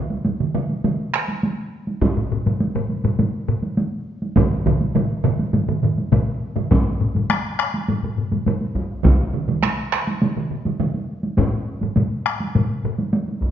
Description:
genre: japanese traditional, taiko drum ensemble.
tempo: 102 BPM.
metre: 4/4.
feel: straight.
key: none.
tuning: none.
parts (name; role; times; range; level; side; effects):
solo taiko drums; percussion; 0.1-13.4 s; none; -24 LUFS; right 2 dB; none.
taiko ensemble; percussion; 0.3-10.9 s; none; -23 LUFS; right 3 dB; none.
taiko ensemble; percussion; 2.0-13.0 s; none; -22 LUFS; left 2 dB; none.
taiko ensemble; percussion; 2.0-13.5 s; none; -21 LUFS; right 1 dB; none.
room: wet recital hall reverb, RT60 1.4 s.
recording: nothing above 7.5 kHz.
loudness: -19 LUFS.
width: side -10 dB against mid.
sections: 0.0-6.7 A section; 6.7-13.5 B section.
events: none.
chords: none.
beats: 0.25 0.84 1.43 | 2.02 2.60 3.19 3.78 | 4.36 4.95 5.53 6.12 | 6.70 7.29 7.87 8.46 | 9.04 9.63 10.21 10.79 | 11.38 11.96 12.54 13.13.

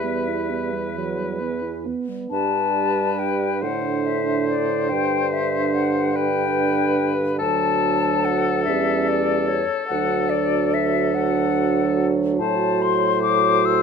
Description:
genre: classical, slow romantic movement for wind quintet.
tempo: 48 BPM (dotted quarters).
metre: 6/8.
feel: uneven beats, rubato.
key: G major.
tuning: A4 = 440 Hz.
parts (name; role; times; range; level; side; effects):
hollow concert flute; melody; 0.0-13.8 s; C#5 to E6; -23 LUFS; left 12 dB; none.
warm oboe; second line; 0.0-13.8 s; A4 to C5; -28 LUFS; left 4 dB; none.
dark clarinet; accompaniment; 0.0-13.8 s; E3 to F#4; -26 LUFS; right 10 dB; none.
mellow French horn; accompaniment; 0.0-13.8 s; D3 to B3; -27 LUFS; right 1 dB; none.
dark bassoon; bass; 0.0-13.8 s; D2 to A2; -24 LUFS; right 4 dB; none.
room: moderate recital hall reverb, RT60 1.4 s.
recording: close, detailed microphones.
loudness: -19 LUFS.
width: side -6 dB against mid.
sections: 0.0-2.3 A section; 2.3-13.8 B section.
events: none.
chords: 0.0 Em; 2.3 G; 3.6 D5/A; 4.9 G; 7.4 D; 8.7 A7/E; 9.9 D; 12.4 F#dim/A.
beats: 0.95 | 2.31 3.62 | 4.91 6.17 | 7.42 8.68 | 9.93 11.18 | 12.41 13.64.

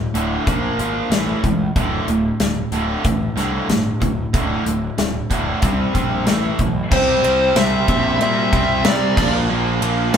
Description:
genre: hard rock.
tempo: 93 BPM.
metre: 4/4.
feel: straight.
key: D minor.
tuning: A4 = 440 Hz.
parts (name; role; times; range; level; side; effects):
overdriven electric guitar; riff; 0.0-10.2 s; D2 to C4; -22 LUFS; right 4 dB; spring reverb.
tight distorted guitar; riff; 0.0-10.2 s; D2 to C4; -24 LUFS; left 3 dB; distortion.
fuzz picked electric bass; bass; 0.0-10.2 s; D1 to C3; -24 LUFS; left 1 dB; overdrive.
big rock drum kit; drums; 0.1-10.2 s; crash cymbal, hi-hat, kick drum, ride cymbal, snare drum; -21 LUFS; left 1 dB; none.
dark smooth lead guitar; melody; 6.9-9.3 s; C5 to E5; -19 LUFS; equal; overdrive.
octave-fuzz lead guitar; second line; 6.9-9.3 s; G4 to C5; -29 LUFS; right 2 dB; distortion.
sludgy distorted guitar; riff; 6.9-10.2 s; Bb2 to C4; -27 LUFS; equal; none.
room: light reverb.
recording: band playing live in one room.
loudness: -16 LUFS.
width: side -8 dB against mid.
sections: 0.0-6.9 A section; 6.9-10.2 B section.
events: none.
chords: 0.5 Bb5; 1.1 A5; 1.8 D5; 5.6 C5; 6.3 A5; 6.9 C; 9.2 Bb5.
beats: 0.47 1.12 | 1.76 2.41 3.05 3.70 | 4.34 4.99 5.63 6.28 | 6.92 7.57 8.21 8.85 | 9.50 10.14.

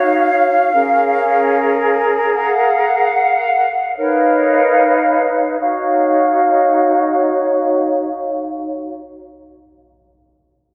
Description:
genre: hip hop.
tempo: free time.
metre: none.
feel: none.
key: Eb minor.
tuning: A4 = 440 Hz.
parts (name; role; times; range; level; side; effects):
bright large flute ensemble; solo; 0.0-9.0 s; Db4 to Gb5; -15 LUFS; equal; tape echo.
room: light reverb, small room ambience.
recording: echo-heavy mix, low-pass filter, faint mains hum.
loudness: -15 LUFS.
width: mono.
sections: 0.0-5.6 A section; 5.6-8.8 B section.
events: none.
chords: 0.0 Ebm9; 0.7 Bbm7; 2.4 Gbmaj9; 4.0 Db13; 5.6 Ebm9.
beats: free time.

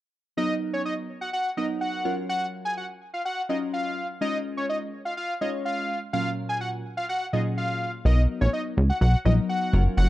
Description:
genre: dance-pop.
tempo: 125 BPM.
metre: 4/4.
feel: straight.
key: unclear.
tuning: A4 = 440 Hz.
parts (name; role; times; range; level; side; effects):
fat analog lead; melody; 0.4-10.1 s; C#5 to G#5; -28 LUFS; equal; chorus.
glassy digital keys; accompaniment; 0.4-10.1 s; A#2 to C#5; -30 LUFS; left 1 dB; chorus, phaser.
plucky analog bass; bass; 8.1-10.1 s; F#1 to C#2; -19 LUFS; equal; none.
room: light reverb.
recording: dark, warm production.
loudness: -24 LUFS.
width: side -15 dB against mid.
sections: 0.4-8.1 A section; 8.1-10.1 B section.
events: none.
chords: 0.4 Bmaj7; 2.1 F#maj7; 4.2 A#m7; 6.1 F#maj7/A#; 8.1 Bmaj7.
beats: | 0.37 0.85 1.33 1.81 | 2.29 2.77 3.25 3.73 | 4.21 4.69 5.17 5.65 | 6.13 6.61 7.09 7.57 | 8.05 8.53 9.01 9.49 | 9.97.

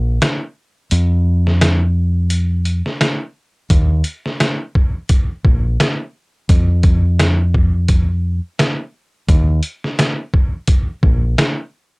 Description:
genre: hip hop, boom-bap hip-hop.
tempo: 86 BPM.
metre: 4/4.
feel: swing 55% on 16ths.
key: unclear.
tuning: A4 = 440 Hz.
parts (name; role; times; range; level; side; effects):
deep dub fingered electric bass; bass; 0.0-11.3 s; Bb1 to F2; -14 LUFS; equal; none.
trip hop sampler-style drum kit; drums; 0.2-11.6 s; hi-hat, kick drum, snare drum; -15 LUFS; equal; cassette tape.
room: little or no reverb.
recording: home recording on cassette.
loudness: -14 LUFS.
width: side -32 dB against mid.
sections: 0.0-12.0 A section.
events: break 0.0-3.7.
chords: none.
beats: 0.21 | 0.91 1.61 2.31 3.00 | 3.70 4.40 5.10 5.79 | 6.49 7.19 7.89 8.59 | 9.28 9.98 10.68 11.38.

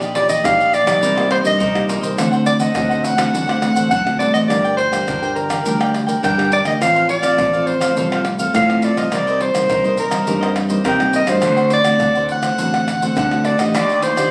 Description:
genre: samba and choro.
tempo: 104 BPM.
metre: 4/4.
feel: straight.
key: G minor.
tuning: A4 = 440 Hz.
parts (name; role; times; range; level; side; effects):
cavaquinho; accompaniment; 0.0-14.3 s; D4 to G5; -27 LUFS; equal; none.
nylon-string guitar; accompaniment; 0.0-14.3 s; G2 to D5; -25 LUFS; equal; none.
growling fingered electric bass; bass; 0.0-14.3 s; G1 to D3; -24 LUFS; equal; overdrive.
maracas, pandeiro, surdo and tamborim; percussion; 0.0-14.3 s; none; -27 LUFS; equal; none.
mellow soprano saxophone; melody; 0.2-14.3 s; Bb4 to G5; -19 LUFS; equal; none.
room: light reverb.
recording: recorded on a phone in the room, studio reverb, compression.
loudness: -17 LUFS.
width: mono.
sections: 0.0-4.5 A section; 4.5-14.3 B section.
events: none.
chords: 0.0 Ebmaj7/Bb; 1.0 Cm7; 2.2 D7; 4.5 Gm; 6.8 F/A; 9.1 Cm7; 11.4 D7; 13.8 Ebmaj7.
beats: 0.46 1.03 1.61 | 2.19 2.76 3.34 3.92 | 4.50 5.07 5.65 6.23 | 6.81 7.39 7.96 8.54 | 9.12 9.70 10.28 10.86 | 11.44 12.02 12.60 13.17 | 13.75.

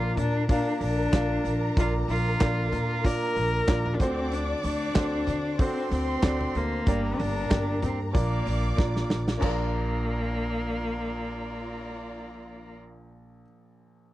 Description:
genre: piano-driven pop.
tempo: 94 BPM.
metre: 4/4.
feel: swing 56% on 16ths.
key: Bb major.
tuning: A4 = 439 Hz.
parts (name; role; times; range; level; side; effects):
rich cello; melody; 0.0-12.7 s; Bb3 to Bb4; -30 LUFS; left 2 dB; slapback echo.
warm symphonic violin section; second line; 0.0-12.7 s; F4 to D6; -36 LUFS; right 1 dB; none.
clear baby grand piano; accompaniment; 0.0-14.1 s; Bb1 to F5; -32 LUFS; equal; none.
upright bass; bass; 0.0-13.4 s; G1 to D3; -30 LUFS; equal; none.
loose indie drum kit; drums; 0.2-9.6 s; crash cymbal, handclaps, hi-hat, kick drum, snare drum, toms; -26 LUFS; equal; none.
room: little or no reverb.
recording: dry, close 1970s-style studio recording.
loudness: -24 LUFS.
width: side -15 dB against mid.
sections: 0.0-9.4 A section; 9.4-12.0 B section.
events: drum fill 8.8-9.4.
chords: 0.0 Bb; 4.0 D7; 6.9 Gm; 8.1 Bb.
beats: 0.49 1.13 | 1.76 2.40 3.04 3.68 | 4.32 4.96 5.59 6.23 | 6.87 7.51 8.14 8.78 | 9.42 10.06 10.70 11.33.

